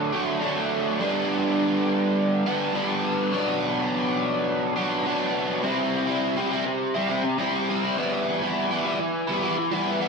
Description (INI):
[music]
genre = rock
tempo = 104 BPM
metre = 4/4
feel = straight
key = unclear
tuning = A4 = 441 Hz
[part]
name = overdriven electric guitar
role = solo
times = 0.0-10.1 s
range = G2 to E4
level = -22 LUFS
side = equal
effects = flanger
[sound]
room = wet plate reverb, RT60 3.2 s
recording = dreamy mix soaked in reverb, small room reverb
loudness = -22 LUFS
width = side -4 dB against mid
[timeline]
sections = 0.0-5.7 A section; 5.7-10.1 B section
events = none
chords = 0.0 D; 1.0 G; 3.3 Bm; 5.7 C; 8.0 Em